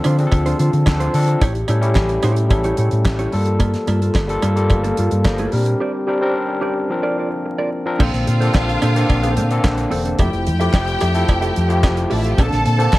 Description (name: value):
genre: disco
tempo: 109 BPM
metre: 4/4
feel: straight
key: unclear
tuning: A4 = 438 Hz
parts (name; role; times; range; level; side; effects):
- mellow electric guitar; accompaniment; 0.0-13.0 s; Bb3 to E5; -26 LUFS; right 2 dB; none
- overdriven tine electric piano; accompaniment; 0.0-13.0 s; D3 to C5; -22 LUFS; left 2 dB; none
- mellow French horn section; sustained chords; 0.0-13.0 s; C2 to A4; -26 LUFS; equal; none
- damped 70s drum kit; drums; 0.0-13.0 s; crash cymbal, handclaps, hi-hat, kick drum, snare drum; -20 LUFS; equal; none
- cowbell; percussion; 0.0-13.0 s; none; -30 LUFS; right 4 dB; none
- hollow-body short-scale fingered electric bass; bass; 0.1-13.0 s; E1 to D3; -18 LUFS; equal; none
- clear symphonic string section; second line; 8.0-13.0 s; D4 to A5; -23 LUFS; equal; none
room: light reverb, small room ambience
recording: dark, warm production, vinyl crackle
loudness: -15 LUFS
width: side -18 dB against mid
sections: 0.0-8.0 A section; 8.0-13.0 B section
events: break 5.8-8.0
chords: 0.0 Dm7; 1.4 A7; 3.3 Gm9; 5.5 Bb69; 6.9 C9sus4; 8.0 Bbmaj9; 10.2 Fmaj9; 12.4 Bbmaj9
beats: 0.32 0.87 | 1.41 1.96 2.51 3.06 | 3.61 4.16 4.71 5.25 | 5.80 6.35 6.90 7.45 | 8.00 8.55 9.10 9.64 | 10.19 10.74 11.29 11.84 | 12.39 12.93